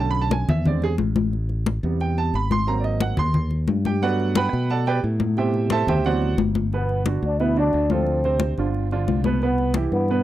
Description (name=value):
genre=Afro-Cuban jazz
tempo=178 BPM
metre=4/4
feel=straight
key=G major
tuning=A4 = 441 Hz
part: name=warm baby grand piano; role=accompaniment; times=0.0-10.2 s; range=B2 to C6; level=-24 LUFS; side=right 5 dB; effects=none
part: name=fingered electric bass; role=bass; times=0.0-10.2 s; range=G1 to B2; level=-23 LUFS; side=equal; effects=none
part: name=congas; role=percussion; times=0.1-10.2 s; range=none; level=-24 LUFS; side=left 4 dB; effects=none
part: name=trombone with cup mute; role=melody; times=6.8-10.2 s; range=B3 to E4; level=-25 LUFS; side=left 2 dB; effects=tape echo
room=little or no reverb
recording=dry, close 1970s-style studio recording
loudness=-19 LUFS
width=side -13 dB against mid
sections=0.0-6.7 A section; 6.7-10.2 B section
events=grand piano solo 0.0-6.7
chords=0.0 Bm9; 0.7 E7b13; 1.3 Am7; 2.7 Ab9; 4.0 Gmaj9; 5.4 Am7; 6.0 D13; 6.7 Gmaj7; 8.1 Dm7; 8.7 G7; 9.4 Cmaj7